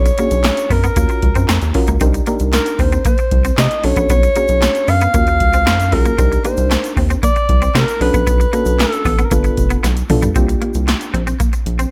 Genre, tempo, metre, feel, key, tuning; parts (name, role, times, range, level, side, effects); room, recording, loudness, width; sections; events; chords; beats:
early-eighties boogie funk; 115 BPM; 4/4; straight; A4 = 439 Hz
breathy alto saxophone; melody; 0.0-9.8 s; A4 to F5; -20 LUFS; equal
mellow FM electric piano; accompaniment; 0.0-11.2 s; Bb3 to Bb4; -24 LUFS; equal; chorus, tremolo
rubbery square bass; bass; 0.0-11.9 s; F1 to C3; -19 LUFS; equal
clean electric guitar; riff; 0.1-11.9 s; G3 to C4; -26 LUFS; equal; ensemble chorus
electro analog drum machine; drums; 0.1-11.9 s; handclaps, hi-hat, kick drum, snare drum, toms; -20 LUFS; equal; gated reverb
tube shaker; percussion; 0.1-11.9 s; -37 LUFS; equal
digital ambience; -15 LUFS; mono
0.0-10.4 A section; 10.4-11.9 B section
drum fill 9.8-10.4
0.0 Bmadd9; 1.0 Ebm9; 2.0 Cm9; 3.8 Bm9; 5.1 Ebm9; 6.2 Cm9; 8.0 Bm9; 9.3 G9; 10.4 C9sus4
0.45 0.97 1.49 | 2.01 2.53 3.06 3.58 | 4.10 4.62 5.14 5.66 | 6.18 6.71 7.23 7.75 | 8.27 8.79 9.32 9.84 | 10.36 10.88 11.40